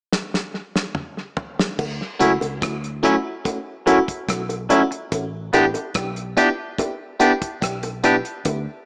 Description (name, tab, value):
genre	lovers rock reggae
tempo	72 BPM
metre	4/4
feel	straight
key	D major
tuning	A4 = 438 Hz
part	damped 70s drum kit	drums	0.1-8.7 s	crash cymbal, hi-hat, kick drum, rim click, snare drum, toms	-28 LUFS	equal	gated reverb, tape echo
part	vintage muted fingered electric bass	bass	1.8-8.7 s	A1 to D2	-33 LUFS	equal	none
part	bongos	percussion	1.8-8.7 s	none	-30 LUFS	equal	none
part	FM electric piano	accompaniment	2.2-8.2 s	A3 to G4	-24 LUFS	equal	chorus, phaser, tape echo
part	twangy electric guitar	stabs	2.2-8.2 s	F#3 to G4	-23 LUFS	equal	none
room	light reverb, small room ambience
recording	small speaker sound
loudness	-22 LUFS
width	mono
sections	0.0-1.8 A section; 1.8-8.9 B section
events	drum fill 0.1-1.8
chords	0.0 N.C.; 1.8 Dmaj9; 5.1 A9sus4